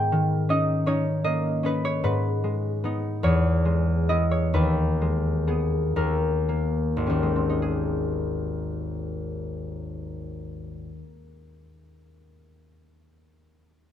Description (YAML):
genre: classical, solo harp piece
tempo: 34-54 BPM (dotted quarters)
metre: 6/8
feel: rubato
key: G# minor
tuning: A4 = 440 Hz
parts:
  - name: concert harp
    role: solo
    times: 0.0-11.4 s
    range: G#1 to G5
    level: -23 LUFS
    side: left 1 dB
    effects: none
room: little or no reverb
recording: close, detailed microphones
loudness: -22 LUFS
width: side -10 dB against mid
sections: 0.0-7.6 A section; 7.6-10.9 B section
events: slowing down 0.9-7.6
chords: 0.0 D#7/G#; 2.0 G#m; 3.2 E; 4.5 G#m/D#; 6.0 D#7; 7.6 G#